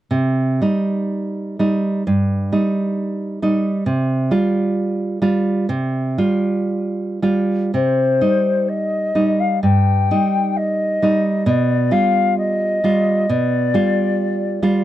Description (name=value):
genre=romantic duo for flute and classical guitar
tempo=63 BPM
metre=4/4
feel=uneven beats, rubato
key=C minor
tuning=A4 = 441 Hz
part: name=nylon-string guitar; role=accompaniment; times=0.1-14.8 s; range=G2 to F4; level=-17 LUFS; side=right 2 dB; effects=none
part: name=mellow hollow silver concert flute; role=melody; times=7.7-14.8 s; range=C5 to G5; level=-19 LUFS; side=left 4 dB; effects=none
room=light reverb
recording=dry, close 1970s-style studio recording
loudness=-16 LUFS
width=side -13 dB against mid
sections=0.1-7.7 A section; 7.7-14.8 B section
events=none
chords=0.1 Cm; 3.9 Csus4; 7.7 Cm; 11.5 G7/B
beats=| 0.10 1.11 2.06 2.97 | 3.87 4.77 5.70 6.70 | 7.75 8.69 9.63 10.56 | 11.47 12.37 13.29 14.18